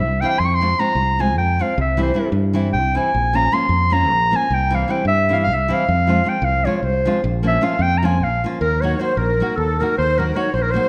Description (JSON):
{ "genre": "balkan folk", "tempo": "307 BPM (eighths)", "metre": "7/8", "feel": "straight", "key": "Bb dorian sharp4", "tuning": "A4 = 440 Hz", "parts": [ { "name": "clear clarinet", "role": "melody", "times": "0.0-10.9 s", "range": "A4 to Db6", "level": "-21 LUFS", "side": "equal", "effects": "none" }, { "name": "fingered electric bass", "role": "bass", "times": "0.0-10.8 s", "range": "Bb1 to G2", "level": "-23 LUFS", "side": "equal", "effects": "none" }, { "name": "nylon-string guitar", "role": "accompaniment", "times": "0.2-10.9 s", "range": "E3 to Gb4", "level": "-26 LUFS", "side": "equal", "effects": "none" }, { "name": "accordion", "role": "second line", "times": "8.6-10.9 s", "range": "A4 to Db5", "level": "-27 LUFS", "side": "equal", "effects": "light tremolo tuning" } ], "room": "moderate recital hall reverb, RT60 1.6 s", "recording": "none", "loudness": "-18 LUFS", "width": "mono", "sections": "0.0-8.6 A section; 8.6-10.9 B section", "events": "clarinet solo 0.0-8.6", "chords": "0.4 Fm; 1.8 C; 3.1 Bbm; 4.5 C; 5.9 Fm; 7.2 Bbm; 8.6 Ebm" }